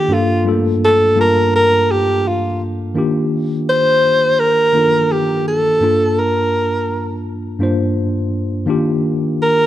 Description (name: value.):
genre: soul.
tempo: 84 BPM.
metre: 4/4.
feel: swing 54% on 16ths.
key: G minor.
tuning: A4 = 440 Hz.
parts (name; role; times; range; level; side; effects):
warm alto saxophone; melody; 0.0-9.7 s; F4 to C5; -14 LUFS; right 1 dB; none.
mellow tine electric piano; accompaniment; 0.0-9.7 s; G2 to A5; -17 LUFS; left 1 dB; medium stereo tremolo.
room: light reverb, small room ambience.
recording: none.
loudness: -13 LUFS.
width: side -12 dB against mid.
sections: 0.0-3.0 A section; 3.0-9.7 B section.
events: alto saxophone solo 0.0-3.0.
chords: 0.1 Gm9; 3.0 Ebmaj7; 5.8 Gm9; 8.7 Ebmaj7.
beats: | 0.10 0.82 1.53 2.25 | 2.96 3.68 4.39 5.11 | 5.82 6.54 7.25 7.97 | 8.68 9.40.